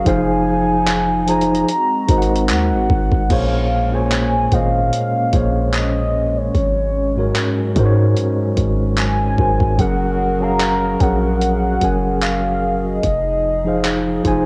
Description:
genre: contemporary R&B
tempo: 74 BPM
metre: 4/4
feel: swing 54% on 16ths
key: Bb minor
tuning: A4 = 440 Hz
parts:
  - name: warm velvety synth lead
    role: melody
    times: 0.0-14.5 s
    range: Db5 to Bb5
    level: -23 LUFS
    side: equal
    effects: chorus, cassette tape, tape echo
  - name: mellow tine electric piano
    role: accompaniment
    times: 0.0-14.5 s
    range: Ab2 to Ab5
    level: -21 LUFS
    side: equal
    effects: cassette tape
  - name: hollow soft pad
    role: sustained chords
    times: 0.0-14.5 s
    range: F3 to Bb4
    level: -29 LUFS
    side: equal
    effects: chorus, cassette tape
  - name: warm 808-style bass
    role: bass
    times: 0.0-14.5 s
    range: F1 to Ab2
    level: -23 LUFS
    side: equal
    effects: none
  - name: dusty soul sampler-style drum kit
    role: drums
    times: 0.1-14.5 s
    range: crash cymbal, handclaps, hi-hat, kick drum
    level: -24 LUFS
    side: equal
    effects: overdrive, cassette tape
room: light reverb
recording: home recording on cassette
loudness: -17 LUFS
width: mono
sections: 0.0-3.3 A section; 3.3-14.5 B section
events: none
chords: 0.1 Fm7; 1.7 Ab9; 3.3 Bbm9; 6.5 Ab7sus4; 9.8 Gbmaj9; 13.0 Fm7

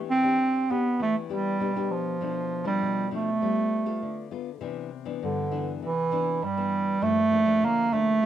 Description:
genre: samba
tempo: 100 BPM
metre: 4/4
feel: straight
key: C major from 4.6 s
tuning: A4 = 440 Hz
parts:
  - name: nylon-string guitar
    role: accompaniment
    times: 0.0-8.3 s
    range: G2 to A4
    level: -33 LUFS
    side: left 9 dB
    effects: cassette tape
  - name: clear bass clarinet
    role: melody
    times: 0.1-8.3 s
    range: D3 to C4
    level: -24 LUFS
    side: right 2 dB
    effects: none
room: moderate studio reverb, RT60 0.6 s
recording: home recording on cassette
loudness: -24 LUFS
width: side -11 dB against mid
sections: 0.0-4.6 A section; 4.6-8.3 B section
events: none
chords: 0.0 Em7; 2.2 Bm7b5; 3.4 G9; 4.6 Cmaj9; 7.0 Gm7

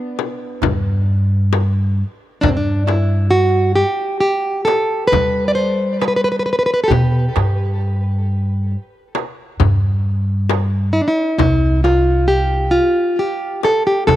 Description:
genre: Arabic maqam ensemble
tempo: 134 BPM (eighths)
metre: 10/8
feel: straight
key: G maqam ajam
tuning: A4 = 440 Hz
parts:
  - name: nylon-string guitar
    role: melody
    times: 0.0-14.2 s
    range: B3 to D5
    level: -16 LUFS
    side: equal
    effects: tape echo
  - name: frame drum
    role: percussion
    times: 0.2-14.2 s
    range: none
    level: -23 LUFS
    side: left 10 dB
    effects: none
  - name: upright bass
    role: bass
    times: 0.6-14.2 s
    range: C2 to G3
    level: -16 LUFS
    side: equal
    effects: none
  - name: darbuka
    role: percussion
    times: 0.6-14.2 s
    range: none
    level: -24 LUFS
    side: right 4 dB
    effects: none
room: light reverb, studio ambience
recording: 1960s-style stereo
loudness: -14 LUFS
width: side -14 dB against mid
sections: 0.0-11.4 A section; 11.4-14.2 B section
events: none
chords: none

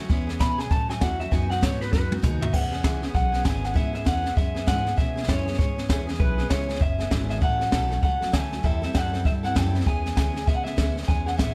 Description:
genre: rockabilly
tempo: 197 BPM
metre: 4/4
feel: swing 62% on 8ths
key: E major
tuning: A4 = 439 Hz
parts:
  - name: picked steel-string acoustic guitar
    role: accompaniment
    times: 0.0-11.5 s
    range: A2 to A4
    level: -35 LUFS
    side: equal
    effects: none
  - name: upright bass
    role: bass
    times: 0.0-11.5 s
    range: F#1 to B2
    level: -30 LUFS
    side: equal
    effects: none
  - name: jazz brush drum kit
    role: drums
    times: 0.1-11.5 s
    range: crash cymbal, hi-hat, kick drum, snare drum, toms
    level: -27 LUFS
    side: equal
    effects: none
  - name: electric guitar through a small old amp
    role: melody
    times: 0.4-11.5 s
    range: B4 to B5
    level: -32 LUFS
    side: equal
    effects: analog delay, plate reverb
room: light reverb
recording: none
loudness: -24 LUFS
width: mono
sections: 0.0-2.5 A section; 2.5-11.5 B section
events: clean electric guitar solo 0.0-2.5; drum fill 1.9-2.5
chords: 0.1 E6; 0.7 A6; 1.3 B6; 2.5 E6; 7.4 A6; 8.6 Am7; 9.9 E6

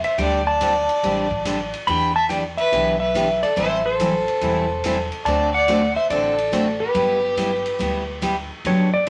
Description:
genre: country, western swing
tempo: 142 BPM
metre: 4/4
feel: swing 66% on 8ths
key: G major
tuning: A4 = 440 Hz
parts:
  - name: clean lap steel guitar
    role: melody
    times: 0.0-9.1 s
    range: B4 to B5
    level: -23 LUFS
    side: equal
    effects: none
  - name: clear fiddle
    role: second line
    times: 0.0-8.2 s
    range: G4 to G5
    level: -27 LUFS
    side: equal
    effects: none
  - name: swinging big-band drum kit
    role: drums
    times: 0.0-9.1 s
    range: hi-hat, kick drum, ride cymbal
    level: -35 LUFS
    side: equal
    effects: none
  - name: picked steel-string acoustic guitar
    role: accompaniment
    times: 0.2-9.1 s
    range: D3 to A4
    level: -26 LUFS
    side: equal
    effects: none
  - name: upright bass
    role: bass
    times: 0.2-9.0 s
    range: E1 to E2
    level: -33 LUFS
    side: equal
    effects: none
room: wet studio reverb, RT60 0.5 s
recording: none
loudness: -21 LUFS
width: mono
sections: 0.0-8.6 A section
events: none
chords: 0.2 D7sus4; 1.9 Em7; 3.6 Am7; 5.3 D7; 7.0 G6

